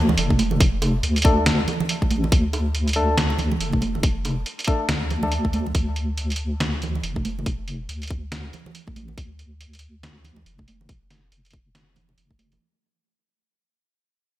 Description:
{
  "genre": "deep dubstep",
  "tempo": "140 BPM",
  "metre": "4/4",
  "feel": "swing 60% on 16ths, half-time",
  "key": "D minor",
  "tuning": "A4 = 444 Hz",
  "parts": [
    { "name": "deep soft wobble bass", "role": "bass", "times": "0.0-12.6 s", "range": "F1 to D2", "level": "-24 LUFS", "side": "equal", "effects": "chorus" },
    { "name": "congas and bongos", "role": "percussion", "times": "0.1-12.6 s", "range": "none", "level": "-28 LUFS", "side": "right 4 dB", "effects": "dub echo" },
    { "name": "trip hop sampler-style drum kit", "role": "drums", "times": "0.2-12.6 s", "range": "hi-hat, snare drum", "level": "-26 LUFS", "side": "equal", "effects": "overdrive, gated reverb" },
    { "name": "electronic kick drum", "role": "drums", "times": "0.3-12.4 s", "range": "none", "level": "-20 LUFS", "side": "equal", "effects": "none" },
    { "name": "percussive organ stab", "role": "stabs", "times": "1.2-5.3 s", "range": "A3 to A4", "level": "-28 LUFS", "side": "left 2 dB", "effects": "chorus, dub echo" }
  ],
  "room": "light reverb",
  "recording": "bright 1980s-style digital production",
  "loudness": "-20 LUFS",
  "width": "side -14 dB against mid",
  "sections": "0.0-12.6 A section",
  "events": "fade-out 0.0-12.6; filter sweep on wobble bass 0.0-12.6",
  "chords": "0.0 D5"
}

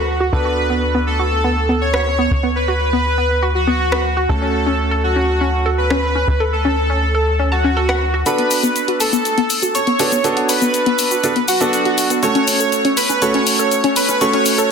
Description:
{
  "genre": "progressive house",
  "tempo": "121 BPM",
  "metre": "4/4",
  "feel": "straight",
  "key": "D major",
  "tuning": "A4 = 440 Hz",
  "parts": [
    { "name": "soft supersaw", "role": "melody", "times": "0.0-14.7 s", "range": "F#4 to C#5", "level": "-18 LUFS", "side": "right 1 dB", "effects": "ping-pong delay" },
    { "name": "analog pluck", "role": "arpeggios", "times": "0.0-14.6 s", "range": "B3 to A5", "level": "-21 LUFS", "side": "left 2 dB", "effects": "chorus, ping-pong delay" },
    { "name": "clear grand piano", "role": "stabs", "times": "0.0-14.7 s", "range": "A3 to A4", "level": "-21 LUFS", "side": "right 4 dB", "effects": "low-pass filter, ping-pong delay" },
    { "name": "tight sequencer bass", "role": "bass", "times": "0.0-8.2 s", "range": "D2", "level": "-19 LUFS", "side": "equal", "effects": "none" },
    { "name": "house drum kit", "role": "drums", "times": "1.9-14.7 s", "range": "hi-hat, rim click, shaker", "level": "-21 LUFS", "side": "left 4 dB", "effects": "soft clipping on snare, high-pass filter on snare, studio reverb, high-pass filter on hats, high-pass filter on perc" },
    { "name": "soft synth bell", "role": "second line", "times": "8.3-14.7 s", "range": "F#5 to C#6", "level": "-26 LUFS", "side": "equal", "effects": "chorus, ping-pong delay" }
  ],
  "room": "moderate digital room reverb, RT60 0.9 s",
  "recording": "dense, heavily limited modern master",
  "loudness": "-14 LUFS",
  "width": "side -6 dB against mid",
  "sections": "0.0-8.3 A section; 8.3-14.7 B section",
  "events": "filter sweep on synth arpeggio sound 0.0-8.3; build-up 8.3-14.7",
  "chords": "0.3 D6; 4.3 F#m/D; 8.3 D6; 12.2 F#m"
}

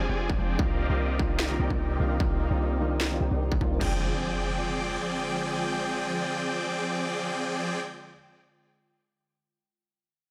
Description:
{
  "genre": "future bass",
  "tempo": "149 BPM",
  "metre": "4/4",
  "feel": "swing 53% on 16ths, half-time",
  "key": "F dorian",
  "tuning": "A4 = 440 Hz",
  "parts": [
    { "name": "airy breathy pad", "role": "sustained chords", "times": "0.0-7.8 s", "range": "C3 to G5", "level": "-41 LUFS", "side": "equal", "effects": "chorus, sidechain pumping" },
    { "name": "supersaw chords", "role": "riff", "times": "0.0-7.8 s", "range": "F3 to Ab5", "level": "-32 LUFS", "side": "equal", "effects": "vintage 12-bit sampler grit, sidechain pumping, low-pass filter, digital delay" },
    { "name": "warm 808-style bass", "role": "bass", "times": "0.0-5.0 s", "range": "F1 to C2", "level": "-31 LUFS", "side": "equal", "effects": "sidechain pumping" },
    { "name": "felt-muted upright piano", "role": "accompaniment", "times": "0.1-8.1 s", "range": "Eb3 to G5", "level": "-38 LUFS", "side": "equal", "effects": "sidechain pumping, digital delay" },
    { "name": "electronic kick drum", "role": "drums", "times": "0.3-3.9 s", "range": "none", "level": "-31 LUFS", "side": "equal", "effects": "distortion, studio reverb" },
    { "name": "trap drum kit", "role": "drums", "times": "1.4-3.9 s", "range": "crash cymbal, snare drum", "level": "-35 LUFS", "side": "equal", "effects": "studio reverb" },
    { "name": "impact", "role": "sound effects", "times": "3.9-8.2 s", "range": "none", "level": "-42 LUFS", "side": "equal", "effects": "none" }
  ],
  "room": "light reverb, digital ambience",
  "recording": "none",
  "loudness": "-28 LUFS",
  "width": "mono",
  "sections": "0.0-3.8 A section; 3.8-7.0 B section",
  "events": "filter sweep on supersaw synth 0.0-3.8",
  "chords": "0.0 Fm69; 0.6 Cm11; 3.8 Fm69"
}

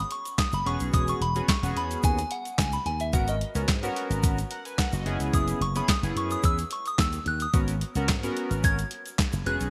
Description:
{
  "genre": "early-eighties boogie funk",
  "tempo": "109 BPM",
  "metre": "4/4",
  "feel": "straight",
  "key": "G# minor",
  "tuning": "A4 = 439 Hz",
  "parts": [
    { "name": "delicate synth tine bell", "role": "melody", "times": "0.0-9.7 s", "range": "D#5 to G#6", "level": "-33 LUFS", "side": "equal", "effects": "chorus" },
    { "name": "slap bass with an envelope filter", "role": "bass", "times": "0.0-9.7 s", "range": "E1 to G#2", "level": "-32 LUFS", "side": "equal", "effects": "none" },
    { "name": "clean 12-bit digital drum machine", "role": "drums", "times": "0.1-9.7 s", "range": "handclaps, hi-hat, kick drum, snare drum", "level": "-29 LUFS", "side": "equal", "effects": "none" },
    { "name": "egg shaker", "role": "percussion", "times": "0.3-9.7 s", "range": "none", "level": "-44 LUFS", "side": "equal", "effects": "none" },
    { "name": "chorused polysynth", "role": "accompaniment", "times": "0.7-9.7 s", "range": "B3 to G#5", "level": "-35 LUFS", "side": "equal", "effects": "none" }
  ],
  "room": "light reverb, digital ambience",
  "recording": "bright 1980s-style digital production",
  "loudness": "-27 LUFS",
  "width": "mono",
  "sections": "0.0-9.7 A section",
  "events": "synth bell solo 0.0-9.7",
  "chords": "0.0 G#7sus4 (rootless); 0.7 E6; 3.1 G#m11; 5.1 F#7sus4; 7.5 G#m11"
}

